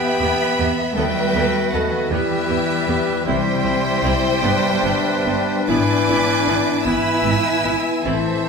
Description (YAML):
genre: classical, slow romantic movement for symphony orchestra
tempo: 51 BPM (dotted quarters)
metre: 6/8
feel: uneven beats, rubato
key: unclear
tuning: A4 = 440 Hz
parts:
  - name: bright symphonic violin section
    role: melody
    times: 0.0-8.5 s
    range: D#5 to E6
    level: -25 LUFS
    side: left 1 dB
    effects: none
  - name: bright clarinet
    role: second line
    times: 0.0-8.5 s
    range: D4 to G4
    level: -28 LUFS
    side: left 5 dB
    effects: none
  - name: bright silver concert flute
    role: second line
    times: 0.0-8.5 s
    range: B4 to B5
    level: -27 LUFS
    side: equal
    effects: none
  - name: clear oboe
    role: second line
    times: 0.0-8.5 s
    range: B4 to C5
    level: -29 LUFS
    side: right 1 dB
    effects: none
  - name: rich chamber violin section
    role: second line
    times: 0.0-8.5 s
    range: F#4 to G#5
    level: -25 LUFS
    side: left 1 dB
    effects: none
  - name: warm bassoon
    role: accompaniment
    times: 0.0-8.5 s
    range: E3 to B3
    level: -28 LUFS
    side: right 2 dB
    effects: none
  - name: dark French horn section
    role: sustained chords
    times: 0.0-8.5 s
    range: B3 to A4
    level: -26 LUFS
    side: left 3 dB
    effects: none
  - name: concert harp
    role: arpeggios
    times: 0.0-8.5 s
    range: G2 to E5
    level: -28 LUFS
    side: left 7 dB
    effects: none
  - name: rich studio cello section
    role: bass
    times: 0.0-8.5 s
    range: D#3 to E4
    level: -24 LUFS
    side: right 2 dB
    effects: none
  - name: rich chamber viola section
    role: accompaniment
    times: 0.2-8.1 s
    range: B3 to A4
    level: -27 LUFS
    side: right 1 dB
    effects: none
  - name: rich chamber double bass section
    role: bass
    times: 0.2-8.1 s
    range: G1 to E2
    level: -28 LUFS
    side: right 4 dB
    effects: none
room: wet scoring stage reverb, RT60 1.4 s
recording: minimal, uncompressed stereo recording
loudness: -16 LUFS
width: side -5 dB against mid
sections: 0.0-8.5 A section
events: none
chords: 0.0 Em; 1.0 B7/D#; 2.1 Em; 3.3 C; 4.4 G; 5.7 E7/G#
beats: | 0.96 2.11 | 3.26 4.42 | 5.68 6.85 | 8.05